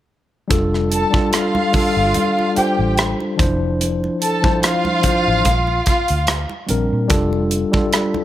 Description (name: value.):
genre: lush 1970s-style soul.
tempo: 73 BPM.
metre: 4/4.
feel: swing 54% on 16ths.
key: F major.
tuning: A4 = 440 Hz.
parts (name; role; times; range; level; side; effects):
mellow tine electric piano; accompaniment; 0.5-8.2 s; E3 to C5; -19 LUFS; left 1 dB; medium stereo tremolo.
vintage muted fingered electric bass; bass; 0.5-7.6 s; F1 to Bb2; -21 LUFS; equal; none.
modern studio drum kit; drums; 0.5-8.1 s; hi-hat, kick drum, rim click; -19 LUFS; right 1 dB; none.
congas; percussion; 0.5-8.2 s; none; -29 LUFS; right 3 dB; none.
warm studio violin section; second line; 0.9-6.2 s; F4 to A5; -19 LUFS; equal; none.
room: light reverb, small room ambience.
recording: none.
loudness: -15 LUFS.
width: side -13 dB against mid.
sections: 0.5-8.2 A section.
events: none.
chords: 0.5 F69; 3.4 Dm9/F; 5.5 Bb69; 7.1 F69.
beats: | 0.50 1.33 2.15 2.98 | 3.80 4.62 5.45 6.28 | 7.10 7.93.